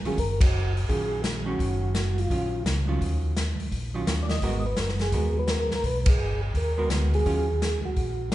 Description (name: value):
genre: soul jazz organ trio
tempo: 170 BPM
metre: 4/4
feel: swing 64% on 8ths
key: Eb minor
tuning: A4 = 440 Hz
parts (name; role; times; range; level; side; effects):
- percussive tonewheel organ; melody; 0.1-8.3 s; F4 to Eb5; -30 LUFS; right 1 dB; slow rotary speaker, chorus vibrato
- hollow-body jazz guitar; accompaniment; 0.1-8.3 s; Eb3 to Bb4; -33 LUFS; right 2 dB; none
- mellow tonewheel organ; bass; 0.1-8.3 s; Gb1 to Eb2; -27 LUFS; equal; chorus vibrato, slow rotary speaker
- swinging big-band drum kit; drums; 0.1-8.3 s; hi-hat, kick drum, ride cymbal, snare drum; -28 LUFS; equal; none
room: moderate recital hall reverb, RT60 1.6 s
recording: recorded in a church or concert hall, nothing above 10.8 kHz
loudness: -23 LUFS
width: side -15 dB against mid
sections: 0.0-8.3 A section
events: band accent 0.4, 6.0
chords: 0.0 Ebm9; 4.4 Abm9; 7.3 Ebm9